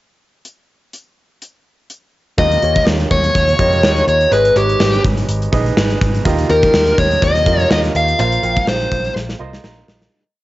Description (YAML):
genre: 1980s-style pop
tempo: 124 BPM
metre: 4/4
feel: swing 55% on 16ths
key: Eb mixolydian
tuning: A4 = 437 Hz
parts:
  - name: gated 80s drum kit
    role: drums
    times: 0.5-10.1 s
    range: hi-hat, kick drum, snare drum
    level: -18 LUFS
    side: equal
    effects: cassette tape
  - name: dark smooth lead guitar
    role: melody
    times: 2.4-9.1 s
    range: G4 to F5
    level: -14 LUFS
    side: left 1 dB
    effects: overdrive, cassette tape
  - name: warm concert grand piano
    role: accompaniment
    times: 2.4-10.1 s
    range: Ab2 to C6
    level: -22 LUFS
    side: right 5 dB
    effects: cassette tape
  - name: picked electric bass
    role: bass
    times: 2.4-10.1 s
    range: Ab1 to F2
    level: -19 LUFS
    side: equal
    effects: none
room: moderate spring reverb, RT60 1.2 s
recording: home recording on cassette, nothing above 7.7 kHz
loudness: -12 LUFS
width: side -16 dB against mid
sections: 0.4-2.4 pickup bar; 2.4-10.1 verse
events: fade-out 8.2-10.1; drum fill 9.2-10.1; grand piano fill 9.2-10.1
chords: 0.4 N.C.; 2.4 Ebadd9; 4.3 Abm; 6.3 Ebadd9; 8.2 Bbsus2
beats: | 0.45 0.93 1.42 1.90 | 2.38 2.87 3.35 3.84 | 4.32 4.80 5.29 5.77 | 6.25 6.74 7.22 7.71 | 8.19 8.67 9.16 9.64